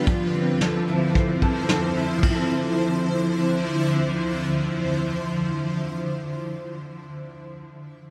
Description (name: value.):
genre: dream pop.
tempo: 111 BPM.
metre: 4/4.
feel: straight.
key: D minor.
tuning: A4 = 438 Hz.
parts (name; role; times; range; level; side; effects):
granular cloud pad; sustained chords; 0.0-7.0 s; D3 to C5; -28 LUFS; equal; built-in reverb, shimmer reverb.
clean electric guitar; arpeggios; 0.0-7.2 s; F3 to A4; -28 LUFS; equal; ensemble chorus, digital delay, shimmer reverb.
soft brush drum kit; drums; 0.1-2.4 s; crash cymbal, hi-hat, kick drum, snare drum; -26 LUFS; equal; none.
room: moderate plate reverb, RT60 1.6 s, small room ambience.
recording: dark, warm production.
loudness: -24 LUFS.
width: mono.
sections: 0.0-2.2 A section; 2.2-6.6 B section.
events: none.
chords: 0.1 Dm9.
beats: | 0.07 0.61 1.15 1.69 | 2.23 2.77 3.31 3.85 | 4.39 4.93 5.47 6.02.